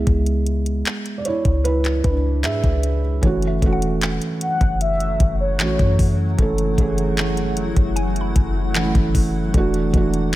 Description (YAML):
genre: contemporary R&B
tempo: 76 BPM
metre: 4/4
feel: straight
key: F# minor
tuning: A4 = 440 Hz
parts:
  - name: felt-muted upright piano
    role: accompaniment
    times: 0.0-10.4 s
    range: E3 to E5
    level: -22 LUFS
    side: right 3 dB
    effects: none
  - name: clean 808-style bass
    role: bass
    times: 0.0-10.4 s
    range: E1 to G#2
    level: -21 LUFS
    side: left 1 dB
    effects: none
  - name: smooth R&B drum kit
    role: drums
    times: 0.1-10.4 s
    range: handclaps, hi-hat, kick drum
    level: -20 LUFS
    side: left 1 dB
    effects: none
  - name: granular cloud pad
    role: sustained chords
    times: 4.5-10.4 s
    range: E3 to F#5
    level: -29 LUFS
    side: left 2 dB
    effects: built-in reverb, sidechain pumping
  - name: mallet-like synth pluck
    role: texture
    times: 3.2-9.2 s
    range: C#5 to B5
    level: -33 LUFS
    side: left 2 dB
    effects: chorus, phaser, tape echo
  - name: mellow horn-like synth lead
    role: melody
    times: 4.4-6.2 s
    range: C#5 to F#5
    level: -24 LUFS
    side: left 2 dB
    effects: chorus, tape echo
room: little or no reverb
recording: none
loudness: -17 LUFS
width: side -15 dB against mid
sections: 0.0-3.2 A section; 3.2-10.4 B section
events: felt piano solo 0.0-3.2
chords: 0.0 C#m7; 3.2 F#m7; 9.5 E9sus4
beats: | 0.07 0.86 1.65 2.44 | 3.23 4.02 4.80 5.59 | 6.38 7.17 7.96 8.75 | 9.54 10.33